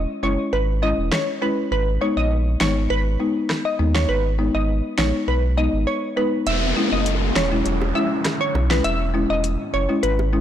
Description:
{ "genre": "dancehall", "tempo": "101 BPM", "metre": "4/4", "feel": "straight", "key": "unclear", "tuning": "A4 = 442 Hz", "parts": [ { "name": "sub bass with octave", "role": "bass", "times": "0.0-10.4 s", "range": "E1 to D#2", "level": "-22 LUFS", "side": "equal", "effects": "none" }, { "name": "glassy wavetable pluck", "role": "melody", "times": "0.2-10.4 s", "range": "B4 to E5", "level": "-24 LUFS", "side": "right 1 dB", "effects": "chorus, tape echo" }, { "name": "folk marimba with medium mallets", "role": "accompaniment", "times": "0.2-10.4 s", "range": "G#3 to E4", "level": "-24 LUFS", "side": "left 3 dB", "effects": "none" }, { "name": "deep house drum kit", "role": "drums", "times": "1.1-10.2 s", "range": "finger snaps, hi-hat, rim click, snare drum", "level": "-25 LUFS", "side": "equal", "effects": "overdrive, soft clipping on snare" }, { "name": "downlifter", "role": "sound effects", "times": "6.5-10.4 s", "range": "none", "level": "-26 LUFS", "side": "left 1 dB", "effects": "none" }, { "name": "bongos", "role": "percussion", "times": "7.8-10.3 s", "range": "none", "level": "-30 LUFS", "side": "right 4 dB", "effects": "none" } ], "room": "light reverb, digital ambience", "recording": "blown-out, overdriven recording, overdrive", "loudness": "-18 LUFS", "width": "side -10 dB against mid", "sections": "0.0-6.5 A section; 6.5-10.4 B section", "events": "break 5.9-6.5; kick muted 6.5-10.4", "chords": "0.0 E6; 1.7 G#m; 6.5 E6" }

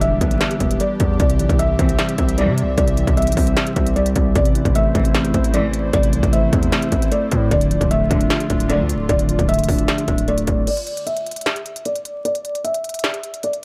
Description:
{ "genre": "hip hop, trap", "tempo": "152 BPM", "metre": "4/4", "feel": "half-time", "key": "unclear", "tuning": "A4 = 437 Hz", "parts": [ { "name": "felt-muted upright piano", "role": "melody", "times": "0.0-13.6 s", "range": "D5 to E5", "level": "-25 LUFS", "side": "equal", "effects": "low-pass filter, tape echo" }, { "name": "mellow electric guitar", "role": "accompaniment", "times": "0.0-10.7 s", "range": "C3 to D4", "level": "-24 LUFS", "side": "equal", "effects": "none" }, { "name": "airy breathy pad", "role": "sustained chords", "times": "0.0-10.6 s", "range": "D3 to E5", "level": "-32 LUFS", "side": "equal", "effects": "chorus" }, { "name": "distorted 808-style bass", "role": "bass", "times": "0.0-10.7 s", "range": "C1 to C3", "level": "-24 LUFS", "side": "equal", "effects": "distortion" }, { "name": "industrial drum kit", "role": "drums", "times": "0.0-13.6 s", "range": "crash cymbal, hi-hat, kick drum, snare drum", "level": "-22 LUFS", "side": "equal", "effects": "distortion" }, { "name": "warm studio string section", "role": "stabs", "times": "1.8-9.1 s", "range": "F2 to E3", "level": "-28 LUFS", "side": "equal", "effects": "none" } ], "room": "digital ambience", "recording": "vinyl crackle", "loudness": "-18 LUFS", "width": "mono", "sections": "0.0-10.7 A section; 10.7-13.6 B section", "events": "break 10.7-13.6", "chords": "0.0 Em7; 1.2 C; 4.4 Am; 7.5 Dm; 10.7 N.C." }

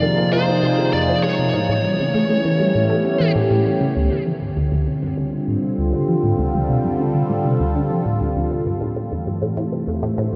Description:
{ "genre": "ambient, sequencer-driven space music", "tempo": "99 BPM", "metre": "4/4", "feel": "straight", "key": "D minor from 4.0 s", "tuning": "A4 = 439 Hz", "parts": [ { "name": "biting lead guitar", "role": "melody", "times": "0.0-3.3 s", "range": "C5 to D5", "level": "-26 LUFS", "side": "equal", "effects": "overdrive, analog delay" }, { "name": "sweeping resonant pad", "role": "sustained chords", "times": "0.0-10.4 s", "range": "C3 to C5", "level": "-23 LUFS", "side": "equal", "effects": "chorus, phaser" }, { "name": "resonant blip pluck", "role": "riff", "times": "0.0-10.4 s", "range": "D2 to C#4", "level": "-23 LUFS", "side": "equal", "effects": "phaser, analog chorus, analog delay" } ], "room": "wet huge ambient reverb, RT60 7.9 s", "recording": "dreamy mix soaked in reverb", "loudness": "-20 LUFS", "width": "mono", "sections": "0.0-4.0 A section; 4.0-10.4 B section", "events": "none", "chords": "0.0 Fm; 1.5 A7; 4.0 Dm; 8.8 Am" }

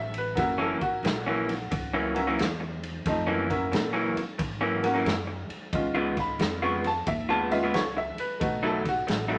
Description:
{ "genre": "electric blues shuffle", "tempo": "90 BPM", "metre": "4/4", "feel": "swing 66% on 8ths", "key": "F# mixolydian", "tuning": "A4 = 440 Hz", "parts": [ { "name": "bright upright piano", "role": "accompaniment", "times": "0.0-9.4 s", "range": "E#3 to C#6", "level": "-31 LUFS", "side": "equal", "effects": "none" }, { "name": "upright bass", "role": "bass", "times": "0.0-9.4 s", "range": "F#1 to A#2", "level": "-39 LUFS", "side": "equal", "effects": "none" }, { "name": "raw garage drum kit", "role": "drums", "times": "0.1-9.3 s", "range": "kick drum, ride cymbal, snare drum", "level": "-34 LUFS", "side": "equal", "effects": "none" }, { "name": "electric guitar through a small old amp", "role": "riff", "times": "0.6-9.4 s", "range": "F#2 to E#4", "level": "-31 LUFS", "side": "equal", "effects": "none" } ], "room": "moderate studio reverb, RT60 0.8 s", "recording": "none", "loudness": "-28 LUFS", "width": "mono", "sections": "0.0-9.4 A section", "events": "none", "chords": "0.4 F#7; 5.7 C#7; 8.4 B7" }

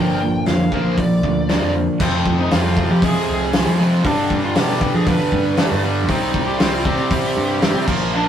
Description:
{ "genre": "quiet-loud alternative rock", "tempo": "117 BPM", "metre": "4/4", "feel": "straight", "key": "unclear", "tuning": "A4 = 440 Hz", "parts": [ { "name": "bluesy overdriven lead guitar", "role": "melody", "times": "0.0-8.3 s", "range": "C4 to G5", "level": "-24 LUFS", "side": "equal", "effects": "distortion" }, { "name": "fingerpicked steel-string acoustic guitar", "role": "arpeggios", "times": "0.0-6.1 s", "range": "F2 to D4", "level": "-24 LUFS", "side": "right 3 dB", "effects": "none" }, { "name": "distorted electric guitar", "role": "riff", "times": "0.0-8.3 s", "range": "F2 to C4", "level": "-21 LUFS", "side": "equal", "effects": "overdrive" }, { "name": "growling picked electric bass", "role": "bass", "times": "0.0-8.3 s", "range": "G1 to F3", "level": "-22 LUFS", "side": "equal", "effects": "overdrive" }, { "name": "loose indie drum kit", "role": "drums", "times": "0.5-8.0 s", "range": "crash cymbal, hi-hat, kick drum, snare drum", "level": "-21 LUFS", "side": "left 1 dB", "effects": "none" } ], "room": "light reverb", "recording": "rough rehearsal-room recording, tube saturation", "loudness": "-15 LUFS", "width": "side -9 dB against mid", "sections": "0.0-2.0 A section; 2.0-8.3 B section", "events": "none", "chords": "0.0 Bb; 2.0 Fm; 4.0 G; 6.1 C5" }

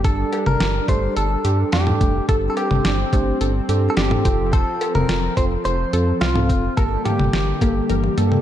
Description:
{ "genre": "synth-pop", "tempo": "107 BPM", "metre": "4/4", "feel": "straight", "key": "G minor", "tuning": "A4 = 440 Hz", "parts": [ { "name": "direct-recorded clean electric guitar", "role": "melody", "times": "0.0-7.9 s", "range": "F4 to C5", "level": "-24 LUFS", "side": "left 1 dB", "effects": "ping-pong delay" }, { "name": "mellow tine electric piano", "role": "accompaniment", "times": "0.0-8.4 s", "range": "Bb3 to C5", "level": "-26 LUFS", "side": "right 4 dB", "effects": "none" }, { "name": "brassy analog pad", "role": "sustained chords", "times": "0.0-8.4 s", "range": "D3 to G4", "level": "-27 LUFS", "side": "left 2 dB", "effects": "chorus, tremolo" }, { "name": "wide unison pluck", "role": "arpeggios", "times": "0.0-8.4 s", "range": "A3 to C5", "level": "-30 LUFS", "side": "moving between left 6 dB and right 3 dB", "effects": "auto-pan, ping-pong delay" }, { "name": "round analog bass", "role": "bass", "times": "0.0-8.4 s", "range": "F1 to G2", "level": "-22 LUFS", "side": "equal", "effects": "none" }, { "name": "clean 12-bit digital drum machine", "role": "drums", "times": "0.0-8.4 s", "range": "cowbell, hi-hat, kick drum, snare drum, toms", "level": "-21 LUFS", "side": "equal", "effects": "none" } ], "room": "light reverb, digital ambience", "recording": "dark, warm production", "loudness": "-17 LUFS", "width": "side -11 dB against mid", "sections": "0.0-8.4 A section", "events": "drum fill 7.9-8.4", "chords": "0.0 Gsus2; 4.3 F; 6.8 Gmadd9" }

